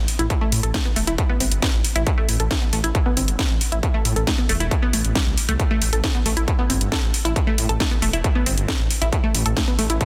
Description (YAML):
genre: driving peak-time techno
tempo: 136 BPM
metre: 4/4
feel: straight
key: A minor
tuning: A4 = 441 Hz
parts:
  - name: detuned saw bass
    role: bass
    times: 0.0-10.0 s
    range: E1 to A2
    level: -26 LUFS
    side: equal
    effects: sidechain pumping
  - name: techno drum kit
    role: drums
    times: 0.1-10.1 s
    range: hi-hat, snare drum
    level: -27 LUFS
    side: equal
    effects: overdrive, sidechain pumping on hats
  - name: unison pluck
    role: riff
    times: 0.2-10.0 s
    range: G3 to A4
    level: -28 LUFS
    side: equal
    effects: sidechain pumping, tape echo
  - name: electronic kick drum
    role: drums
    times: 0.3-10.1 s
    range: none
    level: -24 LUFS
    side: equal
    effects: distortion, overdrive
room: light reverb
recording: dense, heavily limited modern master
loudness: -21 LUFS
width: mono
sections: 0.0-10.1 A section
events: none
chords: 0.0 A5